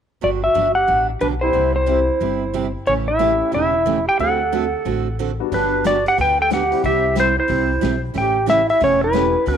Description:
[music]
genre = country, western swing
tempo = 182 BPM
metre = 4/4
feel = swing 62% on 8ths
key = G major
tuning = A4 = 439 Hz
[part]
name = clean lap steel guitar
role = melody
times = 0.2-9.6 s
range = A4 to G5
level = -18 LUFS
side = left 2 dB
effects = none
[part]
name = breathy clarinet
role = second line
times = 0.2-9.6 s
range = C4 to B4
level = -24 LUFS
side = right 11 dB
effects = tape echo
[part]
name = picked steel-string acoustic guitar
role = accompaniment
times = 0.2-9.6 s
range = C3 to A4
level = -25 LUFS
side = right 11 dB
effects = none
[part]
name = upright bass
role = bass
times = 0.2-9.6 s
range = E1 to D2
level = -25 LUFS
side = left 1 dB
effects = none
[part]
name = clear upright piano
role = accompaniment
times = 1.4-9.3 s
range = G3 to G4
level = -26 LUFS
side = left 16 dB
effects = none
[part]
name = vintage drum kit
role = drums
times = 5.5-9.6 s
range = hi-hat, kick drum, snare drum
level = -29 LUFS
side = left 9 dB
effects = none
[sound]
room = light reverb, small room ambience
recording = 1960s-style stereo with parts hard left and right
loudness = -16 LUFS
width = side -8 dB against mid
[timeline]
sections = 0.2-5.5 A section; 5.5-9.6 B section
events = none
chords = 0.2 Gmaj7; 1.6 C; 2.9 A7; 4.2 D7; 5.5 Gmaj7; 6.8 C; 8.2 A7

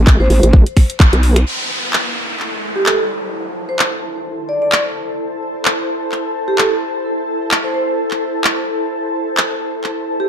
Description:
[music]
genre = bass house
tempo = 129 BPM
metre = 4/4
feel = swing 56% on 16ths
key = A minor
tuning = A4 = 440 Hz
[part]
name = vowel-sweep wobble bass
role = bass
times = 0.0-1.4 s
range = A1 to B1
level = -11 LUFS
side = equal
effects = chorus, tube saturation, sidechain pumping
[part]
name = electronic kick drum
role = drums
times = 0.1-1.1 s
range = none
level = -8 LUFS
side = equal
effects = none
[part]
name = garage drum kit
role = drums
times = 0.1-9.9 s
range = finger snaps, handclaps, hi-hat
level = -18 LUFS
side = equal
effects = none
[part]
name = vibraphone with medium mallets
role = melody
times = 0.2-10.3 s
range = G4 to D5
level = -20 LUFS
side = right 1 dB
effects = ping-pong delay
[part]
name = downlifter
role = sound effects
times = 1.5-5.2 s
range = none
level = -24 LUFS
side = equal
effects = none
[part]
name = ethereal airy pad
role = texture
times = 2.0-10.3 s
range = E4 to A5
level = -21 LUFS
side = equal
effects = ensemble chorus, built-in reverb, sidechain pumping
[sound]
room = moderate digital room reverb, RT60 1.2 s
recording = dark, warm production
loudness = -14 LUFS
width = side -8 dB against mid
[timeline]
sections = 0.0-1.5 A section; 1.5-10.3 B section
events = band accent 1.0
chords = 0.0 N.C.; 1.5 Am

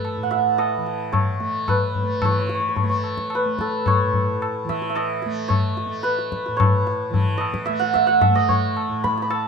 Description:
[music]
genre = indian classical, Hindustani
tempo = 110 BPM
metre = 4/4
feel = straight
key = A raga yaman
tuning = A4 = 440 Hz
[part]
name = santur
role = melody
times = 0.0-9.5 s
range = A4 to B5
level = -21 LUFS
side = right 1 dB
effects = none
[part]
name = tanpura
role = drone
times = 0.0-9.5 s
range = A2 to A3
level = -29 LUFS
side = right 3 dB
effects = none
[part]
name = tabla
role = percussion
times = 0.0-9.5 s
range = none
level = -23 LUFS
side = left 2 dB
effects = none
[sound]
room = wet small room ambience, RT60 0.5 s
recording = minimal, uncompressed stereo recording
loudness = -19 LUFS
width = side -5 dB against mid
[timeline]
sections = 0.0-2.2 A section; 2.2-9.5 B section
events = none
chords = none

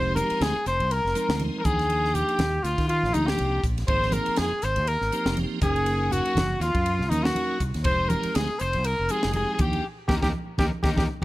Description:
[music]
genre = electric jazz fusion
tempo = 121 BPM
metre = 4/4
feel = swing 55% on 16ths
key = unclear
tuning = A4 = 441 Hz
[part]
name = mellow trumpet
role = melody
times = 0.0-11.2 s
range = Eb4 to C5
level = -27 LUFS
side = equal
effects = none
[part]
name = crunchy overdriven guitar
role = second line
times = 0.0-11.1 s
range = Eb4 to C5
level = -32 LUFS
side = left 4 dB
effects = analog delay
[part]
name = tonewheel organ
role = accompaniment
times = 0.0-11.2 s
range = F3 to G5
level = -31 LUFS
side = right 1 dB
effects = overdrive, chorus vibrato, slow rotary speaker
[part]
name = fingered electric bass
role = bass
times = 0.0-11.1 s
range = F1 to Eb3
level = -28 LUFS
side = equal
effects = none
[part]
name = crisp fusion drum kit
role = drums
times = 0.2-11.1 s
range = hi-hat, kick drum, ride cymbal, snare drum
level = -30 LUFS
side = equal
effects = none
[part]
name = congas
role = percussion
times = 0.2-11.2 s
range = none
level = -32 LUFS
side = right 1 dB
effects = none
[sound]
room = light reverb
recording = none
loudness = -22 LUFS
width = side -17 dB against mid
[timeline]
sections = 0.0-11.2 A section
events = drum fill 9.8-11.2; band accent 9.8-11.2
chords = 0.0 Fm9; 1.7 Ebmaj9; 3.9 Ab69; 5.6 Gb6; 7.9 Fm9; 9.6 Ebmaj9

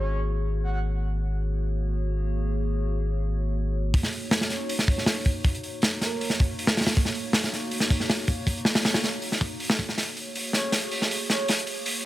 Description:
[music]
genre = drum and bass, jungle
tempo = 159 BPM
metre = 4/4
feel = straight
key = Eb minor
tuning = A4 = 437 Hz
[part]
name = breathy flute-like synth lead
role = melody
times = 0.0-0.8, 4.5-6.3, 10.5-11.5 s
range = Bb4 to Gb5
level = -35 LUFS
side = right 1 dB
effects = lush chorus, dub echo
[part]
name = warbly tape-like pad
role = sustained chords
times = 0.0-12.1 s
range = Bb3 to Db5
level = -34 LUFS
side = right 1 dB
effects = chorus, built-in reverb
[part]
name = saturated sub bass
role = bass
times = 0.0-3.9 s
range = Ab1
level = -26 LUFS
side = equal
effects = none
[part]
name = crunchy breakbeat drum kit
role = drums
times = 3.9-12.0 s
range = hi-hat, kick drum, snare drum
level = -23 LUFS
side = equal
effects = none
[sound]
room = light reverb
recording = high-pass filter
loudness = -23 LUFS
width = side -15 dB against mid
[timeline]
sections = 0.0-3.9 A section; 3.9-12.1 B section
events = build-up 3.9-12.1; filter sweep on soft synth lead 3.9-12.1; filter sweep 3.9-12.1; drum fill 10.0-12.1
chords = 0.0 Ab9sus4; 3.9 Ebm7; 10.0 Ab9sus4

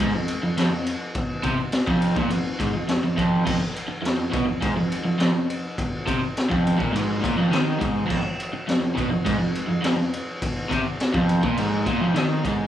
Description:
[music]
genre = garage rock duo or trio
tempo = 104 BPM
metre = 4/4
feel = straight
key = unclear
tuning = A4 = 438 Hz
[part]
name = crunchy overdriven guitar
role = riff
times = 0.0-12.7 s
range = F2 to Eb3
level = -22 LUFS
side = right 1 dB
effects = none
[part]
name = raw garage drum kit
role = drums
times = 0.0-12.6 s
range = crash cymbal, kick drum, ride cymbal, snare drum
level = -25 LUFS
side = left 1 dB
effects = none
[sound]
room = moderate large studio reverb, RT60 1.4 s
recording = band playing live in one room, cassette tape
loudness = -21 LUFS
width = side -11 dB against mid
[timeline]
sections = 0.0-12.7 A section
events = none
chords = none

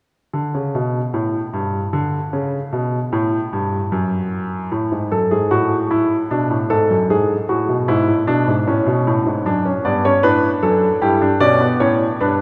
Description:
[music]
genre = classical, baroque-style 3-part fugue for grand piano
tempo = 76 BPM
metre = 3/4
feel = straight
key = unclear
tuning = A4 = 440 Hz
[part]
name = warm grand piano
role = solo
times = 0.3-12.4 s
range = F#2 to D5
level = -18 LUFS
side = equal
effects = none
[sound]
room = wet church reverb, RT60 3.3 s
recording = recorded in a church or concert hall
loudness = -18 LUFS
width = mono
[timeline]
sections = 0.0-12.4 A section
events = none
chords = 0.0 N.C.; 4.7 A5; 6.3 Bm7; 7.1 E/G#; 8.7 A; 9.5 D/F#; 11.0 Em7/G; 11.8 A

